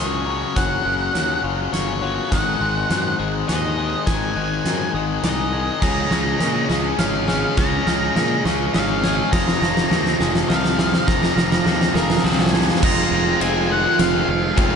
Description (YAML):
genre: post-rock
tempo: 103 BPM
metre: 3/4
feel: straight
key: unclear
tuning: A4 = 440 Hz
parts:
  - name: octave-fuzz lead guitar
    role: melody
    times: 0.0-14.8 s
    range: Bb4 to Bb5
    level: -24 LUFS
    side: equal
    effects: distortion, slapback echo
  - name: glockenspiel with rubber mallets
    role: arpeggios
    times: 0.0-12.8 s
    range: C6 to Ab6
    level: -32 LUFS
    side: right 5 dB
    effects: slapback echo
  - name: semi-hollow electric guitar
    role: arpeggios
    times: 0.0-14.8 s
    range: F2 to Ab4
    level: -30 LUFS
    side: left 4 dB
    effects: none
  - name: distorted electric guitar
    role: riff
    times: 0.0-14.8 s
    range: F2 to F4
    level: -24 LUFS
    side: left 11 dB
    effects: overdrive, slapback echo
  - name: fuzz fingered electric bass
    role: bass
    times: 0.0-14.8 s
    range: F1 to Bb2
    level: -26 LUFS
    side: equal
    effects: overdrive
  - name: huge arena drum kit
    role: drums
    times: 0.6-14.7 s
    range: crash cymbal, hi-hat, kick drum, ride cymbal, snare drum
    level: -22 LUFS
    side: right 1 dB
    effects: none
  - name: distorted electric guitar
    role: riff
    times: 5.8-14.8 s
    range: F2 to F4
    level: -24 LUFS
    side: right 11 dB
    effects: distortion
room: moderate lush hall reverb, RT60 2.1 s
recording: big arena sound, nothing above 10.8 kHz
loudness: -17 LUFS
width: side -6 dB against mid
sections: 0.0-12.8 A section; 12.8-14.8 B section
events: build-up 0.0-12.8; drum fill 0.0-12.8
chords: 0.0 Gbmaj7; 2.3 Ab7; 5.8 Db; 9.3 Fm7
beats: | 0.56 1.15 1.73 | 2.32 2.90 3.49 | 4.07 4.66 5.24 | 5.82 6.41 6.99 | 7.58 8.16 8.74 | 9.33 9.91 10.49 | 11.08 11.66 12.24 | 12.83 13.41 13.99 | 14.58